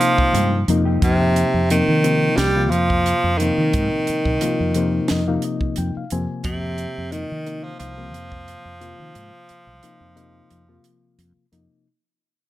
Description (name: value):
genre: electric jazz fusion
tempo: 88 BPM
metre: 4/4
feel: straight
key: unclear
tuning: A4 = 440 Hz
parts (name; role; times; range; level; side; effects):
- edgy tenor saxophone; melody; 0.0-11.1 s; C3 to G3; -21 LUFS; right 1 dB; plate reverb
- barky reed electric piano; accompaniment; 0.0-11.9 s; C3 to Ab5; -24 LUFS; left 4 dB; none
- crisp fusion drum kit; drums; 0.0-11.7 s; hi-hat, kick drum, snare drum; -25 LUFS; right 1 dB; none
- mellow electric guitar; stabs; 0.2-1.0 s; Ab3 to G4; -30 LUFS; right 2 dB; wide subtle chorus, plate reverb
- mellow fretless electric bass; bass; 0.3-11.7 s; C2 to Eb3; -23 LUFS; equal; none
room: moderate studio reverb, RT60 0.6 s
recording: none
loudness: -17 LUFS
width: side -14 dB against mid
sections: 0.0-11.9 A section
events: fade-out 0.0-11.9; reed electric piano fill 4.4-6.4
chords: 0.0 F7(no3)